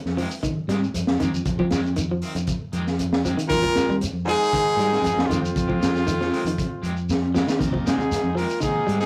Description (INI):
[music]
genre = afrobeat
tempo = 117 BPM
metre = 4/4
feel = straight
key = F minor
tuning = A4 = 440 Hz
[part]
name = fingered electric bass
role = bass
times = 0.1-9.1 s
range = Eb2 to F3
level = -30 LUFS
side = equal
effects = none
[part]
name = crunchy breakbeat drum kit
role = drums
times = 0.1-9.1 s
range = hi-hat, kick drum, snare drum, splash cymbal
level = -28 LUFS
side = equal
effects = none
[part]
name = electric guitar at the edge of break-up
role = arpeggios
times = 0.2-9.0 s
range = Eb3 to G3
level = -30 LUFS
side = equal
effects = none
[part]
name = electric guitar at the edge of break-up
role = stabs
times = 0.2-9.1 s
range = Eb3 to G4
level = -37 LUFS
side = equal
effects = tremolo
[part]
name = shekere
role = percussion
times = 0.2-9.1 s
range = none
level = -36 LUFS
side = equal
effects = none
[part]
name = clear trumpet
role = melody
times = 3.5-9.1 s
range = F4 to Bb4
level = -26 LUFS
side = equal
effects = none
[part]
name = bright alto saxophone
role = second line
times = 3.5-9.1 s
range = C4 to F4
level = -36 LUFS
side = equal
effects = none
[part]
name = raspy baritone saxophone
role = second line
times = 3.5-9.1 s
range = F2 to Bb2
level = -33 LUFS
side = equal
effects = none
[part]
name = combo organ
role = accompaniment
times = 7.6-8.9 s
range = C3 to Eb4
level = -33 LUFS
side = equal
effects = none
[sound]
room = moderate studio ambience, RT60 0.5 s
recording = rough rehearsal-room recording, warm saturation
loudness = -23 LUFS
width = mono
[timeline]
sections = 0.0-9.1 A section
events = drum fill 7.1-7.6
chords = 0.0 Fm9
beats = 0.43 0.94 | 1.45 1.96 2.47 2.98 | 3.50 4.01 4.52 5.03 | 5.54 6.05 6.57 7.08 | 7.59 8.10 8.62